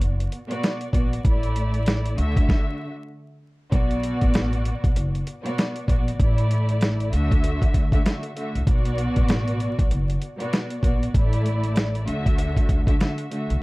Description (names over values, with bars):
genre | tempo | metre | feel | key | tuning
hip hop, boom-bap hip-hop | 97 BPM | 4/4 | swing 60% on 16ths | B minor | A4 = 436 Hz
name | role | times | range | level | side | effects
warm studio string section | accompaniment | 0.0-13.6 s | A2 to E5 | -27 LUFS | equal | cassette tape, high-pass filter, low-pass filter, plate reverb
upright bass | bass | 0.0-13.6 s | F#1 to D2 | -24 LUFS | equal | none
dusty soul sampler-style drum kit | drums | 0.0-13.6 s | hi-hat, kick drum, snare drum | -21 LUFS | equal | none
room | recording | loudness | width
little or no reverb | dark, warm production, vinyl crackle | -20 LUFS | side -22 dB against mid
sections
0.0-3.7 A section; 3.7-13.6 B section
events
stop 2.5-3.7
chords
0.0 Bm; 1.3 Asus4; 2.2 Dadd9; 3.7 Bm; 6.2 Asus4; 7.1 Dadd9; 8.7 Bm; 11.1 Asus4; 12.1 Dadd9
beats
0.01 0.63 | 1.25 1.87 2.49 3.11 | 3.73 4.34 4.96 5.58 | 6.20 6.82 7.44 8.05 | 8.67 9.29 9.91 10.53 | 11.15 11.77 12.38 13.00